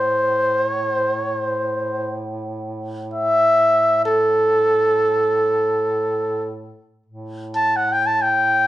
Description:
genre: caucasian folk, Caucasian lament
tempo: free time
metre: none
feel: none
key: A minor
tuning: A4 = 440 Hz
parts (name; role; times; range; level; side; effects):
- warm trumpet; melody; 0.0-8.7 s; A4 to A5; -16 LUFS; equal; none
- warm duduk; drone; 0.0-8.7 s; A2; -30 LUFS; right 1 dB; none
room: wet stone room reverb, RT60 0.9 s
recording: band playing live in one room, nothing above 10.4 kHz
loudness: -17 LUFS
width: side -14 dB against mid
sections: 0.0-7.1 A section; 7.1-8.7 A section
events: none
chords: none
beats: free time

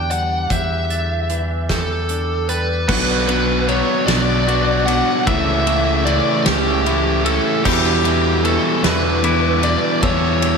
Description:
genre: post-rock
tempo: 50 BPM (dotted quarters)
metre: 6/8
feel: straight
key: E dorian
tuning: A4 = 440 Hz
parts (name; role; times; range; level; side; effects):
- bluesy overdriven lead guitar; melody; 0.0-10.6 s; G4 to G5; -21 LUFS; equal; distortion, slapback echo
- pedal steel guitar; sustained chords; 0.0-10.6 s; C#3 to F#5; -32 LUFS; right 1 dB; none
- glockenspiel with soft plastic mallets; arpeggios; 0.0-10.6 s; C#6 to A6; -28 LUFS; right 3 dB; slapback echo
- twangy electric guitar; arpeggios; 0.0-10.6 s; E2 to F#4; -28 LUFS; left 3 dB; phaser, slapback echo
- overdriven fingered electric bass; bass; 0.0-10.6 s; B1 to E2; -22 LUFS; equal; none
- loose indie drum kit; drums; 0.1-10.6 s; crash cymbal, hi-hat, kick drum, ride cymbal, snare drum; -23 LUFS; equal; none
- fuzz guitar; riff; 2.9-10.6 s; E2 to B3; -21 LUFS; right 11 dB; distortion
- sludgy distorted guitar; riff; 2.9-10.6 s; B2 to E4; -21 LUFS; left 10 dB; overdrive
room: wet lush hall reverb, RT60 2.6 s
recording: big arena sound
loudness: -15 LUFS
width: side -5 dB against mid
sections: 0.0-2.9 A section; 2.9-10.6 B section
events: none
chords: 0.0 Em7; 2.9 Bm; 5.3 A/C#; 7.7 Em7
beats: | 0.51 1.70 | 2.90 4.09 | 5.28 6.46 | 7.65 8.84 | 10.03

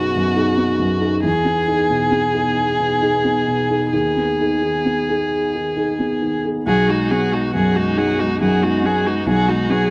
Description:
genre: neoclassical piano and strings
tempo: 45 BPM (dotted quarters)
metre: 6/8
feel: uneven beats, rubato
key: B major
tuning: A4 = 439 Hz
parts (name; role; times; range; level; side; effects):
- rich violin; melody; 0.0-9.9 s; F#4 to G#4; -22 LUFS; equal; none
- felt-muted upright piano; accompaniment; 0.0-9.9 s; B1 to G#4; -22 LUFS; equal; none
- warbly tape-like pad; sustained chords; 0.0-9.9 s; B3 to G#4; -31 LUFS; equal; none
- rich cello; second line; 6.7-9.9 s; F#3 to G#3; -26 LUFS; equal; none
- rich viola; accompaniment; 6.7-9.9 s; D#4 to F#4; -28 LUFS; equal; none
room: moderate spring reverb, RT60 1.9 s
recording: dark, warm production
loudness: -18 LUFS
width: mono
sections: 0.0-6.7 A section; 6.7-9.9 A section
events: none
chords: 0.0 G#m7/B; 1.2 Emaj7; 3.9 B6/D#; 6.7 B6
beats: | 1.25 2.57 | 3.93 5.30 | 6.67 7.97 | 9.27

